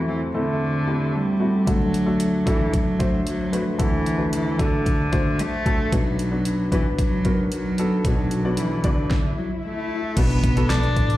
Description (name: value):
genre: piano-driven pop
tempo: 113 BPM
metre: 4/4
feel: straight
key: unclear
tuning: A4 = 440 Hz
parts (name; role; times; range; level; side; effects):
- warm cello; melody; 0.0-11.2 s; D3 to D4; -24 LUFS; right 1 dB; slapback echo
- warm grand piano; accompaniment; 0.0-11.2 s; B1 to D5; -24 LUFS; left 1 dB; slapback echo
- pop drum kit; drums; 1.7-11.2 s; crash cymbal, handclaps, hi-hat, kick drum, snare drum; -23 LUFS; equal; overdrive
- swell and impact; sound effects; 9.0-11.2 s; none; -32 LUFS; left 2 dB; slapback echo
- picked electric bass; bass; 10.2-11.2 s; A1 to B1; -21 LUFS; equal; none
room: moderate club reverb, RT60 0.8 s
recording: live gig heard through the venue's PA, recital hall reverb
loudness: -19 LUFS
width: side -15 dB against mid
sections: 0.0-10.2 A section; 10.2-11.2 B section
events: swell 9.0-10.2; stop 9.1-10.2; impact 10.2-11.2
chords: 0.0 Am/E; 1.7 D; 5.9 Bm